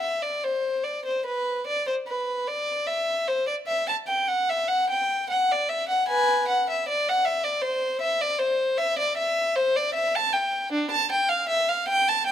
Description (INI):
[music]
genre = classical, baroque-style suite movement for unaccompanied violin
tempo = 76 BPM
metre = 4/4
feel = uneven beats, rubato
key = unclear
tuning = A4 = 440 Hz
[part]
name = rich violin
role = solo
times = 0.0-12.3 s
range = D4 to A5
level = -22 LUFS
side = equal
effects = none
[sound]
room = moderate recital hall reverb, RT60 1.5 s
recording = close, detailed microphones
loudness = -22 LUFS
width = side -10 dB against mid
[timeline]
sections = 0.0-12.3 A section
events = none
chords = none